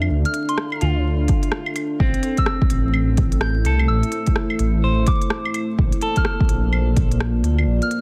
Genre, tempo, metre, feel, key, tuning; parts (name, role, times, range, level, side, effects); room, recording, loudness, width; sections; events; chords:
future garage; 127 BPM; 4/4; swing 62% on 16ths; A4 = 442 Hz
deep dark ambient pad; sustained chords; 0.0-8.0 s; A3 to F5; -28 LUFS; equal; chorus, built-in reverb, sidechain pumping
dark detuned saw bass; bass; 0.0-7.8 s; A1 to D2; -22 LUFS; equal; sidechain pumping
organic electronic drum kit; drums; 0.0-8.0 s; claves, hi-hat, rim click; -29 LUFS; equal; studio reverb, soft clipping on snare
soft synth bell; melody; 0.3-8.0 s; C6 to G6; -32 LUFS; equal; chorus, phaser, analog delay
clean electric guitar; accompaniment; 0.8-7.6 s; C4 to C5; -30 LUFS; equal; sidechain pumping, tape echo
electronic kick drum; drums; 1.3-7.1 s; -22 LUFS; equal; studio reverb
little or no reverb; dense, heavily limited modern master, vinyl crackle; -20 LUFS; mono
0.0-8.0 A section
0.0 Dm; 2.0 Am; 5.8 Bbmaj7